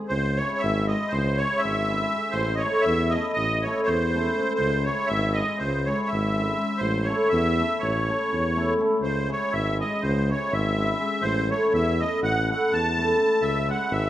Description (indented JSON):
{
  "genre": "balkan folk, Balkan wedding band",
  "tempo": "244 BPM (eighths)",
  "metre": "9/8",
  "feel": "straight",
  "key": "unclear",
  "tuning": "A4 = 440 Hz",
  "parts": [
    { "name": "cimbalom", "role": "accompaniment", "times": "0.0-14.1 s", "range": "G#3 to A4", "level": "-27 LUFS", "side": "left 1 dB", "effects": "none" },
    { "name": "musette accordion", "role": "melody", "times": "0.1-14.1 s", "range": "B#4 to A5", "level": "-26 LUFS", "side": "equal", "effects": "none" },
    { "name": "warm tuba", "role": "bass", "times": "0.1-14.1 s", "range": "G#1 to E2", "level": "-26 LUFS", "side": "equal", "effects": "none" }
  ],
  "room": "moderate recital hall reverb, RT60 1.4 s",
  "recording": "none",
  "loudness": "-22 LUFS",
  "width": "side -13 dB against mid",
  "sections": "0.1-14.1 A section",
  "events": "none",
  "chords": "0.1 C#m; 2.4 A; 4.6 C#m; 6.8 A; 9.0 C#m; 11.2 A; 13.4 C#m",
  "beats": "| 0.11 0.36 0.61 0.86 1.11 1.36 1.60 1.85 2.10 | 2.35 2.60 2.85 3.10 3.34 3.59 3.84 4.09 4.33 | 4.58 4.83 5.07 5.32 5.57 5.81 6.06 6.30 6.55 | 6.80 7.04 7.29 7.53 7.78 8.03 8.27 8.52 8.76 | 9.01 9.25 9.50 9.74 9.99 10.23 10.48 10.72 10.97 | 11.21 11.46 11.70 11.94 12.19 12.43 12.68 12.92 13.17 | 13.41 13.65 13.90"
}